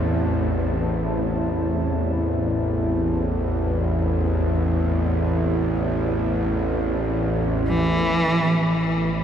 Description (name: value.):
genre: dark ambient drone.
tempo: free time.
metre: none.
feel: none.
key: unclear.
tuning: A4 = 440 Hz.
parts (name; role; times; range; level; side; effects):
deep dark ambient pad; sustained chords; 0.0-9.2 s; C4 to A5; -33 LUFS; equal; chorus, built-in reverb.
bowed-like drone; drone; 0.0-9.2 s; A1 to E2; -21 LUFS; equal; built-in reverb.
warm cello; melody; 7.7-8.9 s; E3; -20 LUFS; equal; ping-pong delay.
room: wet huge ambient reverb, RT60 8.0 s.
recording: dreamy mix soaked in reverb.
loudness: -20 LUFS.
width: side -9 dB against mid.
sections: 0.0-7.7 A section; 7.7-9.2 B section.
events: none.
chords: 0.0 Am.